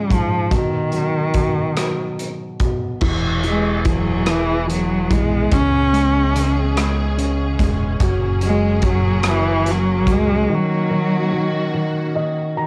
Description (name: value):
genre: six-eight pop ballad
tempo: 48 BPM (dotted quarters)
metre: 6/8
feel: straight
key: unclear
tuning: A4 = 441 Hz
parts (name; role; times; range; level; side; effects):
- rich cello; melody; 0.0-11.8 s; D#3 to C#4; -22 LUFS; equal; cassette tape
- felt-muted upright piano; accompaniment; 0.0-12.7 s; C#2 to A#5; -25 LUFS; equal; cassette tape
- modern studio drum kit; drums; 0.1-10.3 s; crash cymbal, hi-hat, kick drum, rim click; -24 LUFS; equal; cassette tape
- clear studio string section; sustained chords; 3.0-12.7 s; D#3 to G#4; -30 LUFS; equal; cassette tape
- deep dub fingered electric bass; bass; 3.0-10.5 s; E1 to C#2; -23 LUFS; equal; none
room: moderate studio ambience, RT60 0.5 s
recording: home recording on cassette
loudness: -19 LUFS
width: mono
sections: 0.0-3.0 A section; 3.0-12.7 B section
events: break 10.5-12.7; felt piano fill 11.7-12.7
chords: 0.0 C#; 0.5 B; 3.0 E; 5.5 C#m7; 8.0 F#add9; 10.5 D#m7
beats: | 0.52 1.77 | 3.03 4.28 | 5.53 6.77 | 8.01 9.25 | 10.49 11.74